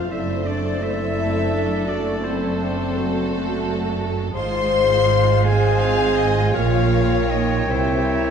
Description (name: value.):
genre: classical, slow romantic movement for symphony orchestra.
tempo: 47-58 BPM (dotted quarters).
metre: 12/8.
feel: rubato.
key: F minor from 4.4 s.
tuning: A4 = 440 Hz.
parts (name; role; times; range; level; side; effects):
rich studio violin section; melody; 0.0-8.3 s; A4 to F5; -30 LUFS; left 2 dB; none.
clear oboe; second line; 0.0-8.3 s; C5 to C6; -32 LUFS; equal; none.
silver concert flute; second line; 0.0-8.3 s; D5 to G5; -32 LUFS; equal; none.
warm clarinet; second line; 0.0-8.3 s; A4 to Db5; -31 LUFS; left 2 dB; none.
warm studio violin section; second line; 0.0-8.3 s; C5 to C6; -30 LUFS; left 3 dB; none.
dark bassoon; accompaniment; 0.0-8.3 s; Ab3 to Bb3; -31 LUFS; right 2 dB; none.
rich studio viola section; accompaniment; 0.0-8.3 s; G3 to G4; -28 LUFS; right 2 dB; none.
warm French horn section; sustained chords; 0.0-8.3 s; C4 to C5; -22 LUFS; left 5 dB; none.
rich studio cello section; bass; 0.0-8.3 s; F#2 to C3; -25 LUFS; right 3 dB; none.
warm studio double bass section; bass; 0.0-8.3 s; F#1 to C2; -26 LUFS; right 4 dB; none.
room: moderate scoring stage reverb, RT60 1.8 s.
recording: dark, warm production.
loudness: -17 LUFS.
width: side -7 dB against mid.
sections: 0.0-8.3 A section.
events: none.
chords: 0.1 D7/F#; 4.4 Fm/Ab; 6.5 Gm7b5/Bb; 7.7 C7b9.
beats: | 0.09 1.18 2.23 3.29 | 4.36 5.45 6.54 7.70.